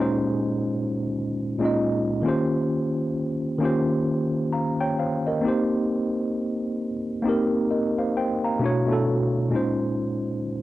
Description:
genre	hip hop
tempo	66 BPM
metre	4/4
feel	swing 60% on 16ths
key	Bb dorian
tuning	A4 = 438 Hz
part	mellow tine electric piano	solo	0.0-10.6 s	Bb2 to Bb5	-22 LUFS	equal	medium stereo tremolo, low-pass filter
room	moderate studio ambience, RT60 0.5 s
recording	dry, gritty hardware recording, cassette tape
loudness	-22 LUFS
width	side -15 dB against mid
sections	0.0-10.6 A section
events	none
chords	0.0 Bbm11; 2.2 Eb13; 5.4 Cm7; 8.6 Bm11; 9.5 Bbm11

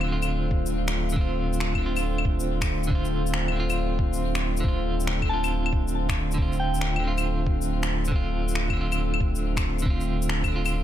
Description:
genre	future garage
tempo	138 BPM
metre	4/4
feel	swing 67% on 16ths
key	D minor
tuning	A4 = 438 Hz
part	clean electric guitar	accompaniment	0.0-10.8 s	D3 to F4	-31 LUFS	right 2 dB	tremolo, sidechain pumping, ping-pong delay
part	warbly tape-like pad	sustained chords	0.0-10.8 s	D3 to C5	-31 LUFS	left 1 dB	chorus, built-in reverb, sidechain pumping
part	warm sub bass	bass	0.0-10.8 s	D1	-28 LUFS	equal	sidechain pumping
part	electronic claves, shaker and finger snaps	drums	0.0-10.7 s	none	-32 LUFS	left 3 dB	overdrive
part	electronic kick drum	drums	0.5-10.5 s	none	-26 LUFS	equal	none
part	soft synth bell	melody	5.3-7.0 s	G5 to A5	-33 LUFS	left 2 dB	chorus, ping-pong delay
room	light reverb, digital ambience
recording	none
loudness	-23 LUFS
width	side -11 dB against mid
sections	0.0-10.8 A section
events	none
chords	0.0 Dm7

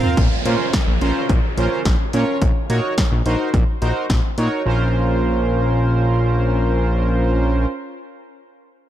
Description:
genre	synth-pop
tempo	107 BPM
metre	4/4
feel	straight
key	Bb minor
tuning	A4 = 440 Hz
part	analog synth brass	accompaniment	0.0-7.7 s	C4 to F5	-21 LUFS	right 2 dB	chorus
part	punchy analog drum machine	drums	0.0-4.5 s	hi-hat, kick drum, snare drum, toms	-18 LUFS	equal	none
part	fat analog bass	bass	0.2-7.7 s	Bb1 to Bb2	-18 LUFS	equal	none
part	downlifter	sound effects	0.2-4.7 s	none	-29 LUFS	right 1 dB	none
room	light reverb, digital ambience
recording	dark, warm production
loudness	-16 LUFS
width	side -12 dB against mid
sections	0.2-4.7 A section; 4.7-6.9 B section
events	drum fill 0.0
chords	0.2 Bbmadd9; 2.4 Ebm7/Bb; 4.7 Bbmadd9

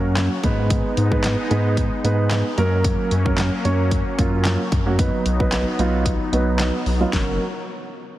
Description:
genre	dance-pop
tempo	112 BPM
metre	4/4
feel	straight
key	F# major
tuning	A4 = 440 Hz
part	dark baby grand piano	accompaniment	0.0-7.4 s	F#3 to C#5	-23 LUFS	right 3 dB	sidechain pumping, low-pass filter
part	filtered supersaw swell	sustained chords	0.0-7.4 s	F#3 to C#5	-28 LUFS	left 1 dB	sidechain pumping, low-pass filter
part	round analog bass	bass	0.0-7.4 s	F#1 to G#2	-21 LUFS	left 1 dB	sidechain pumping
part	pop drum kit	drums	0.2-7.3 s	handclaps, hi-hat, kick drum, snare drum	-24 LUFS	left 1 dB	none
room	light reverb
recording	heavily compressed radio sound, multiband compression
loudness	-18 LUFS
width	side -14 dB against mid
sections	0.0-7.1 A section; 7.1-8.2 B section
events	filter sweep 0.0-7.1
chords	0.4 G#m; 2.6 F#; 5.0 B; 7.1 F#

